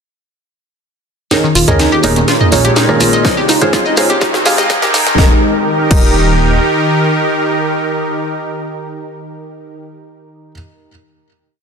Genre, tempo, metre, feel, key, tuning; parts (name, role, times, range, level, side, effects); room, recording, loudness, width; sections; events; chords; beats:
progressive house; 124 BPM; 4/4; straight; Eb mixolydian; A4 = 440 Hz
supersaw pad; sustained chords; 1.3-9.8 s; Db3 to G5; -16 LUFS; right 1 dB; sidechain pumping, low-pass filter
analog pluck; arpeggios; 1.3-6.0 s; Eb3 to Eb5; -16 LUFS; equal; chorus, cassette tape, sidechain pumping, digital delay
felt-muted upright piano; stabs; 1.3-10.5 s; Bb2 to F5; -16 LUFS; equal; sidechain pumping, digital delay
house drum kit; drums; 1.3-6.1 s; crash cymbal, hi-hat, rim click, snare drum; -17 LUFS; equal; overdrive
shekere; percussion; 1.3-5.2 s; -22 LUFS; left 2 dB
riser; sound effects; 2.8-5.2 s; -25 LUFS; right 1 dB
dark detuned saw bass; bass; 1.6-6.6 s; Eb1 to Db2; -18 LUFS; left 1 dB; tube saturation, sidechain pumping
electronic toms and congas; percussion; 1.7-5.2 s; -20 LUFS; right 2 dB; sidechain pumping on toms, sidechain pumping on perc
electronic kick drum; drums; 3.2-6.1 s; -13 LUFS; equal; overdrive
moderate lush hall reverb, RT60 2.1 s; dense, heavily limited modern master, high-pass filter; -10 LUFS; side -6 dB against mid
1.3-5.2 build; 5.2-9.1 final chord
build-up 1.3-5.2; drum fill 1.3-5.2; filter sweep on supersaw synth 1.3-5.2; filter sweep 1.3-5.2
1.3 Eb7sus4; 2.3 Bbm7; 3.2 Dbmaj7; 4.2 Abmaj7; 5.2 Eb
| 1.31 1.79 2.28 2.76 | 3.25 3.73 4.21 4.70 | 5.18 5.67 6.15 6.63 | 7.12 7.60 8.09 8.57